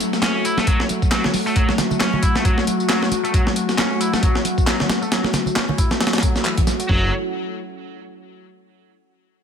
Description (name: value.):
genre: breakbeat, breaks.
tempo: 135 BPM.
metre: 4/4.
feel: swing 58% on 16ths.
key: F# minor.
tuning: A4 = 440 Hz.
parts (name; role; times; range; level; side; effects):
warbly tape-like pad; sustained chords; 0.0-7.1 s; F#3 to F#4; -23 LUFS; left 1 dB; chorus, built-in reverb, phaser, sidechain pumping.
breakbeat sampler-style drum kit; drums; 0.0-7.0 s; hi-hat, kick drum, snare drum; -19 LUFS; equal; none.
electronic tambourine and handclaps; drums; 0.0-6.9 s; none; -29 LUFS; equal; none.
scooped high-gain guitar; riff; 0.2-7.1 s; E3 to F#4; -25 LUFS; equal; distortion, low-pass filter, ping-pong delay.
congas; percussion; 0.2-6.8 s; none; -28 LUFS; right 3 dB; none.
detuned saw bass; bass; 6.9-7.1 s; F#1; -22 LUFS; equal; none.
room: light reverb.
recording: none.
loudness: -17 LUFS.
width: side -7 dB against mid.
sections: 0.0-6.9 A section; 6.9-8.7 B section.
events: filter sweep on distorted electric guitar 0.0-6.9.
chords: 0.0 F#m; 6.9 N.C..